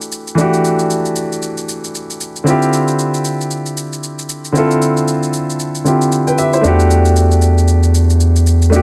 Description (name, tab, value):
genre	amapiano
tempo	115 BPM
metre	4/4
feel	swing 58% on 16ths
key	unclear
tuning	A4 = 440 Hz
part	warm baby grand piano	accompaniment	0.0-8.8 s	D3 to G5	-17 LUFS	equal	none
part	shaker	drums	0.0-8.8 s	none	-28 LUFS	equal	overdrive
part	saturated sub bass	bass	6.6-8.8 s	E2	-12 LUFS	equal	none
room	digital ambience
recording	none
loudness	-14 LUFS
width	mono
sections	0.0-8.8 A section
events	none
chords	0.0 Em11; 2.5 Dm11; 6.6 Em11